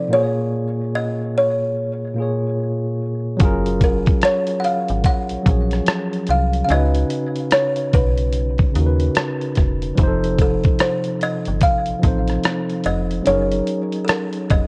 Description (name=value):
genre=lo-fi hip hop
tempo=73 BPM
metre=4/4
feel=swing 62% on 16ths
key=F# major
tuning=A4 = 440 Hz
part: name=buzzing kalimba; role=melody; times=0.0-14.7 s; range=A4 to F#5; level=-24 LUFS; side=equal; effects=tape echo
part: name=tine electric piano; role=accompaniment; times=0.0-14.7 s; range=A#2 to C#5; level=-25 LUFS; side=equal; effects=cassette tape
part: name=metallic FM bass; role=bass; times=3.4-14.7 s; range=E1 to D#2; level=-23 LUFS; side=equal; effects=none
part: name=dusty soul sampler-style drum kit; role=drums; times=3.4-14.7 s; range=hi-hat, kick drum, rim click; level=-21 LUFS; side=equal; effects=vintage 12-bit sampler grit
room=digital ambience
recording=worn, warbling old tape, cassette tape, warbly pitch drift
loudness=-19 LUFS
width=mono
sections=0.0-14.7 A section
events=break 0.0-3.4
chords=0.1 A#m7; 3.4 F#maj7; 6.7 C#9sus4; 10.0 F7; 13.3 F#69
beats=| 0.12 0.94 1.76 2.58 | 3.40 4.23 5.05 5.87 | 6.69 7.51 8.34 9.16 | 9.98 10.80 11.62 12.45 | 13.27 14.09